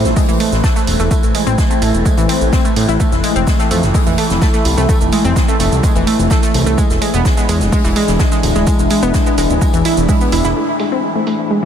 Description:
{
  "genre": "melodic techno",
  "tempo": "127 BPM",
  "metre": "4/4",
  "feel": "straight",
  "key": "A harmonic minor",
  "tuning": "A4 = 440 Hz",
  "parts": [
    { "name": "deep dark ambient pad", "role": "sustained chords", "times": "0.0-11.7 s", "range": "G#3 to C5", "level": "-21 LUFS", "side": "left 1 dB", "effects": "chorus, built-in reverb, sidechain pumping" },
    { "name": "fat analog bass", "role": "bass", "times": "0.0-10.5 s", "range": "D1 to A2", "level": "-17 LUFS", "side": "equal", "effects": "sidechain pumping" },
    { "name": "overtone-sweeping drone", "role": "drone", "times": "0.0-11.7 s", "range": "A2 to E3", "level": "-24 LUFS", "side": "left 2 dB", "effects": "chorus, built-in reverb, sidechain pumping" },
    { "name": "electronic shaker and hi-hat", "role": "drums", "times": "0.1-11.4 s", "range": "none", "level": "-25 LUFS", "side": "right 6 dB", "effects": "low-pass filter on perc, low-pass filter on hats, low-pass filter on room" },
    { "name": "soft-mallet drum kit", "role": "drums", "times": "0.1-10.6 s", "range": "hi-hat, snare drum, tambourine", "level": "-29 LUFS", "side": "left 2 dB", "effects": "sidechain pumping on hats, high-pass filter on hats, high-pass filter on snare, sidechain pumping on perc, high-pass filter on perc, high-pass filter on room" },
    { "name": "analog pluck", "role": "arpeggios", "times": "0.2-11.7 s", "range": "E3 to E4", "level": "-17 LUFS", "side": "right 1 dB", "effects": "chorus, sidechain pumping, analog delay" },
    { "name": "electronic kick drum", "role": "drums", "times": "0.2-10.2 s", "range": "none", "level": "-15 LUFS", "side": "equal", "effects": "overdrive" }
  ],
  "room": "moderate huge ambient reverb, RT60 7.3 s",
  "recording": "dreamy mix soaked in reverb",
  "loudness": "-11 LUFS",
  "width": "side -9 dB against mid",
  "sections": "0.0-10.6 A section; 10.6-11.7 B section",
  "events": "filter sweep on synth pluck 10.6-11.7",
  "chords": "0.0 Am; 3.0 Fmaj7; 6.8 E7; 10.6 Am"
}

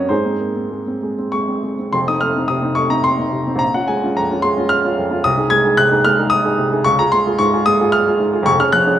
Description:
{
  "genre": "classical, romantic character piece for solo piano",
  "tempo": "95-114 BPM",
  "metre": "3/4",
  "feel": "rubato",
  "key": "Db major",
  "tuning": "A4 = 442 Hz",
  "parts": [
    { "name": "warm upright piano", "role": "solo", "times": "0.0-9.0 s", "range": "F1 to Ab6", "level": "-14 LUFS", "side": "equal", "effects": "none" }
  ],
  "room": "wet recital hall reverb, RT60 1.8 s",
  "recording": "none",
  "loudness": "-14 LUFS",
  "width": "side -11 dB against mid",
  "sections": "0.0-1.9 A section; 1.9-9.0 B section",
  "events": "none",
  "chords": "0.1 Ab; 1.9 F7; 3.6 Bbm7; 5.2 Ab/C; 6.9 Db; 8.5 Db/F"
}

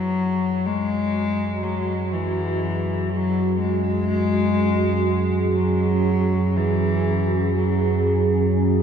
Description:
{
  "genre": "dark ambient drone",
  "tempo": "free time",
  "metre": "none",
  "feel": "none",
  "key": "unclear",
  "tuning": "A4 = 441 Hz",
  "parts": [
    { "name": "dark cello", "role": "melody", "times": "0.0-8.5 s", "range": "E3 to G#3", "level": "-24 LUFS", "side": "left 3 dB", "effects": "diffuse ambient delay" },
    { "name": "sweeping resonant pad", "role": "sustained chords", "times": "0.0-8.8 s", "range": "C#4 to G#4", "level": "-25 LUFS", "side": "right 2 dB", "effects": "chorus" },
    { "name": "deep rumbling drone", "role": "drone", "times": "0.0-8.8 s", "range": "F#2 to F#3", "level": "-23 LUFS", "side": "right 2 dB", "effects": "built-in reverb" }
  ],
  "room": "moderate huge ambient reverb, RT60 9.2 s",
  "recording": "dreamy mix soaked in reverb",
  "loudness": "-19 LUFS",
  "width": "side -7 dB against mid",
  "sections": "0.0-8.8 A section",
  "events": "none",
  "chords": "0.0 F#sus2"
}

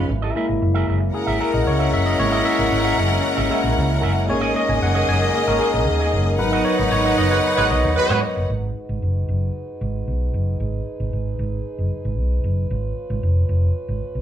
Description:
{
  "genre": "disco",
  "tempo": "114 BPM",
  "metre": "4/4",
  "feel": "straight",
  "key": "G# minor",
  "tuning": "A4 = 441 Hz",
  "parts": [
    { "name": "clear studio string section", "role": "second line", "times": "0.0-8.5 s", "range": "A#3 to F#5", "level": "-22 LUFS", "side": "left 1 dB", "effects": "none" },
    { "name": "barky tine electric piano", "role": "accompaniment", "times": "0.0-8.5 s", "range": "E#3 to G#5", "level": "-22 LUFS", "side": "left 1 dB", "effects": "overdrive" },
    { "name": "electric guitar with an envelope filter", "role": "accompaniment", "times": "0.0-8.4 s", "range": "C#4 to E5", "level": "-28 LUFS", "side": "right 5 dB", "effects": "none" },
    { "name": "mellow French horn section", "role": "sustained chords", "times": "0.0-14.2 s", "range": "F#3 to B4", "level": "-30 LUFS", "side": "left 1 dB", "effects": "none" },
    { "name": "hollow-body short-scale fingered electric bass", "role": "bass", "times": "0.0-14.2 s", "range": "E#1 to G#2", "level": "-21 LUFS", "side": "equal", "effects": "none" },
    { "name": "warm horn section", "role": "stabs", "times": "7.3-8.2 s", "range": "G#3 to B4", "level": "-22 LUFS", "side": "right 2 dB", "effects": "none" }
  ],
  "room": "moderate large studio reverb, RT60 0.9 s",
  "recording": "band playing live in one room",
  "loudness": "-18 LUFS",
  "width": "side -10 dB against mid",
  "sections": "0.0-8.5 A section; 8.5-14.2 B section",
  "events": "tine electric piano solo 0.0-8.5; band accent 6.4-8.5",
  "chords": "0.1 F#9; 4.3 D#7sus4; 6.4 G#m7; 12.7 C#7"
}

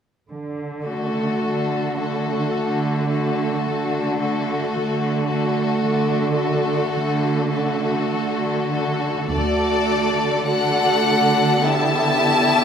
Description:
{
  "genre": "classical, slow romantic movement for string orchestra",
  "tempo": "47-56 BPM",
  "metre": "4/4",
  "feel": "rubato",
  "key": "D major",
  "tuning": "A4 = 440 Hz",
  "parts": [
    { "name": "warm chamber cello section", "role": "bass", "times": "0.3-12.6 s", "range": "D3", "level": "-24 LUFS", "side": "right 3 dB", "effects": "none" },
    { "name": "clear chamber violin section", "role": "melody", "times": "0.9-12.6 s", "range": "A4 to A5", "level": "-25 LUFS", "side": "left 3 dB", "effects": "none" },
    { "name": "clear chamber violin section", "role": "second line", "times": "0.9-12.6 s", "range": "F#4 to E5", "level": "-24 LUFS", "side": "left 4 dB", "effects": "none" },
    { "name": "rich chamber viola section", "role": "accompaniment", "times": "0.9-12.6 s", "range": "A3 to F#4", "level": "-24 LUFS", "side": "right 3 dB", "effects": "none" },
    { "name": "rich studio double bass section", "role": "bass", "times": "9.3-10.4 s", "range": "D2", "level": "-28 LUFS", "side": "right 2 dB", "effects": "none" }
  ],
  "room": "wet scoring stage reverb, RT60 1.6 s",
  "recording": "none",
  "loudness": "-18 LUFS",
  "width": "side -7 dB against mid",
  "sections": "0.3-9.3 A section; 9.3-12.6 B section",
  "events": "none",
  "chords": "0.3 D; 11.6 Em7/D"
}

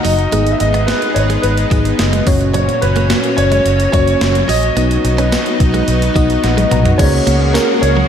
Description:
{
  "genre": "1980s-style pop",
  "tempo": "108 BPM",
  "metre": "4/4",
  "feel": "straight",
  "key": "unclear",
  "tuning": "A4 = 439 Hz",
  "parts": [
    { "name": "warm concert grand piano", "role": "melody", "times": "0.0-8.1 s", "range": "A#4 to E5", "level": "-18 LUFS", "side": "right 1 dB", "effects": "lush chorus, ping-pong delay" },
    { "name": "FM electric piano", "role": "accompaniment", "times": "0.0-8.1 s", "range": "A#2 to A#5", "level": "-18 LUFS", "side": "left 2 dB", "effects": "chorus" },
    { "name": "lush unison pad", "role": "sustained chords", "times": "0.0-8.1 s", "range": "A#2 to A#4", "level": "-20 LUFS", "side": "equal", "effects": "chorus" },
    { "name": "direct-recorded clean electric guitar", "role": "riff", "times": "0.0-8.1 s", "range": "F#3 to C#4", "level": "-23 LUFS", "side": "right 4 dB", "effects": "analog chorus, ping-pong delay" },
    { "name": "clean 12-bit digital drum machine", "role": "drums", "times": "0.0-8.0 s", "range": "crash cymbal, hi-hat, kick drum, snare drum, tambourine, toms", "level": "-18 LUFS", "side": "equal", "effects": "none" },
    { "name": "vintage muted fingered electric bass", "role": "bass", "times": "0.1-8.0 s", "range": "F#1 to C#2", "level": "-16 LUFS", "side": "equal", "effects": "none" }
  ],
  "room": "wet lush hall reverb, RT60 2.6 s",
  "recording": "dreamy mix soaked in reverb",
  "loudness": "-11 LUFS",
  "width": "side -8 dB against mid",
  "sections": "0.0-7.0 A section; 7.0-8.1 B section",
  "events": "FM electric piano fill 6.2-7.0; drum fill 6.4-7.0",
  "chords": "0.3 G#m; 2.3 F#; 4.8 B; 7.0 F#add9/C#"
}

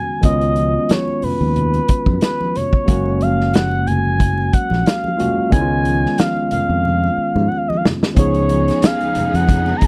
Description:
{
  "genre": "lush 1970s-style soul",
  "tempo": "91 BPM",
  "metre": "4/4",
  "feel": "swing 54% on 16ths",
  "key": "unclear",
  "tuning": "A4 = 438 Hz",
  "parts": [
    { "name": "expressive synth lead", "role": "melody", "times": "0.0-9.9 s", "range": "B4 to A#5", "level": "-23 LUFS", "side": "equal", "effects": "chorus" },
    { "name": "barky tine electric piano", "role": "accompaniment", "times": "0.0-9.9 s", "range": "D#3 to G#4", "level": "-24 LUFS", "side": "equal", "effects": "none" },
    { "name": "fingered electric bass", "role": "bass", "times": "0.2-9.9 s", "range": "F#1 to G#2", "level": "-21 LUFS", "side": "equal", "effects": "none" },
    { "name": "vintage drum kit", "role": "drums", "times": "0.2-9.9 s", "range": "hi-hat, kick drum, snare drum", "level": "-18 LUFS", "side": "equal", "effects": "none" },
    { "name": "congas", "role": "percussion", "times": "0.2-9.8 s", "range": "none", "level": "-30 LUFS", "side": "equal", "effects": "none" },
    { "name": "warm symphonic string section", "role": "sustained chords", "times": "8.2-9.9 s", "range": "C#3 to G#4", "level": "-30 LUFS", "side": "equal", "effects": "none" }
  ],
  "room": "little or no reverb",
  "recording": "dry, close 1970s-style studio recording",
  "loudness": "-17 LUFS",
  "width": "mono",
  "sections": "0.0-8.2 A section; 8.2-9.9 B section",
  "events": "drum fill 6.8-8.2",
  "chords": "0.0 C#9sus4; 2.9 F#maj9; 5.5 C#7"
}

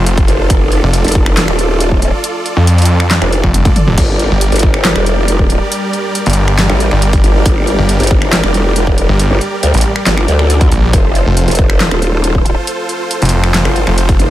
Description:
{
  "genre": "heavy wobble dubstep",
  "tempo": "138 BPM",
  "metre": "4/4",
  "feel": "half-time",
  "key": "unclear",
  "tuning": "A4 = 441 Hz",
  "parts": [
    { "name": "supersaw chords", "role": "sustained chords", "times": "0.0-14.3 s", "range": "G3 to D5", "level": "-18 LUFS", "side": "right 1 dB", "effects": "sidechain pumping" },
    { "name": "snarling distorted saw bass", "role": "bass", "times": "0.0-14.2 s", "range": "F1 to F2", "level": "-12 LUFS", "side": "equal", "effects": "distortion, overdrive" },
    { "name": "big-room dance drum kit", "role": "drums", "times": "0.1-14.3 s", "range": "crash cymbal, finger snaps, handclaps, hi-hat, snare drum, toms", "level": "-16 LUFS", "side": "equal", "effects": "overdrive, small room ambience" },
    { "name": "electronic kick drum", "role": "drums", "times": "0.2-14.2 s", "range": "none", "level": "-12 LUFS", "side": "equal", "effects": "overdrive, small room ambience" },
    { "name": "growl bass", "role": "bass", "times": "0.3-14.3 s", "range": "Eb1 to D2", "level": "-13 LUFS", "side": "equal", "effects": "chorus, overdrive" }
  ],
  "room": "digital ambience",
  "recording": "none",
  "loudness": "-9 LUFS",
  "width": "side -14 dB against mid",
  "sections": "0.0-14.3 A section",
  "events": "drum fill 3.5-4.0",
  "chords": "0.0 F; 4.0 Gm; 10.9 F"
}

